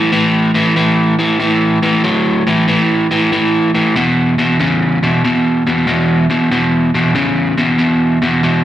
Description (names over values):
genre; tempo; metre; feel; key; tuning
blues; 94 BPM; 4/4; swing 67% on 8ths; A major; A4 = 440 Hz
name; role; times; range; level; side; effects
overdriven electric guitar; solo; 0.0-8.6 s; E2 to F#3; -11 LUFS; equal; slapback echo
room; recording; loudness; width
moderate club reverb, RT60 0.9 s; live gig heard through the venue's PA, club reverb; -11 LUFS; side -12 dB against mid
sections
0.0-8.6 A section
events
none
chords
0.0 A5; 4.0 E5